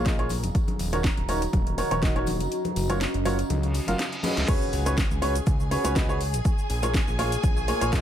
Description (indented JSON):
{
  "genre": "piano house",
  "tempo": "122 BPM",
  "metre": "4/4",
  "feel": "swing 54% on 16ths",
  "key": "F# major",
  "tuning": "A4 = 441 Hz",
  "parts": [
    { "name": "clear upright piano", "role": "riff", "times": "0.0-8.0 s", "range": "D#3 to E#5", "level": "-28 LUFS", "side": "equal", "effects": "sidechain pumping, low-pass filter, digital delay" },
    { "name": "fat analog bass", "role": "bass", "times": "0.0-8.0 s", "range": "D#1 to C#2", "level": "-28 LUFS", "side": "equal", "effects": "tube saturation, sidechain pumping" },
    { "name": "deep dark ambient pad", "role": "texture", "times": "0.0-4.5 s", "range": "C#4 to A#5", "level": "-33 LUFS", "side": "right 1 dB", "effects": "chorus, built-in reverb, sidechain pumping" },
    { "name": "electronic kick drum", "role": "drums", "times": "0.1-8.0 s", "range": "none", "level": "-25 LUFS", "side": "equal", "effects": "overdrive" },
    { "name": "house drum kit", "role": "drums", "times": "0.1-8.0 s", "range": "crash cymbal, hi-hat, shaker, snare drum", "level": "-33 LUFS", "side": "left 1 dB", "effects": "overdrive" },
    { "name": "tambourine and congas", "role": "percussion", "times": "0.1-4.5 s", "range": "none", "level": "-35 LUFS", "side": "left 4 dB", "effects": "none" },
    { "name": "reverse cymbal and impact", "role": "sound effects", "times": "3.7-6.5 s", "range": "none", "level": "-35 LUFS", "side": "right 1 dB", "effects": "none" },
    { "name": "string machine, violins", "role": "sustained chords", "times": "4.5-8.0 s", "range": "G#4 to G#5", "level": "-33 LUFS", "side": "left 1 dB", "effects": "ensemble chorus, sidechain pumping" }
  ],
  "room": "digital ambience",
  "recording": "none",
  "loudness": "-22 LUFS",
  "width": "side -10 dB against mid",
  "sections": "0.0-4.5 A section; 4.5-8.0 B section",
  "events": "kick drops out 2.5-4.5; reverse cymbal 3.7-4.5; drum fill 4.0-4.5; drop 4.5-8.0; impact 4.5-6.5",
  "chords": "0.3 D#m7; 2.3 F#maj7; 4.5 C#7sus4; 6.2 A#m7",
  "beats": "0.06 | 0.55 1.04 1.53 2.02 | 2.52 3.01 3.50 3.99 | 4.48 4.97 5.47 5.96 | 6.45 6.94 7.43 7.93"
}